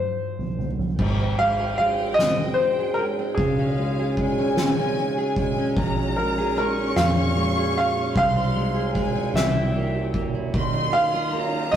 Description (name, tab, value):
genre	six-eight pop ballad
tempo	50 BPM (dotted quarters)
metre	6/8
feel	straight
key	unclear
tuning	A4 = 435 Hz
part	clear grand piano	melody	0.0-11.8 s	Ab4 to F5	-24 LUFS	equal	none
part	soft-mallet drum kit	drums	0.4-11.8 s	crash cymbal, kick drum, ride cymbal, snare drum, toms	-26 LUFS	right 1 dB	none
part	rich studio violin section	second line	1.0-11.8 s	F5 to Db6	-30 LUFS	left 3 dB	none
part	fingerpicked steel-string acoustic guitar	accompaniment	1.0-11.8 s	Ab2 to Ab4	-26 LUFS	right 1 dB	none
part	vintage muted fingered electric bass	bass	1.0-11.8 s	Ab1 to F2	-27 LUFS	equal	none
part	warm symphonic string section	sustained chords	10.6-11.8 s	Eb3 to F4	-38 LUFS	left 1 dB	none
room	wet stone room reverb, RT60 1.2 s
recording	rough rehearsal-room recording, warm saturation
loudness	-20 LUFS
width	side -9 dB against mid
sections	1.0-11.8 A section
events	drum fill 0.0-1.0; stop 0.0-1.0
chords	0.0 N.C.; 1.0 Ab; 3.4 Db; 5.8 Bbm7; 8.2 Fm/C; 9.3 C7; 10.5 Ebadd9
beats	| 0.99 2.19 | 3.38 4.57 | 5.77 6.96 | 8.15 9.35 | 10.54 11.73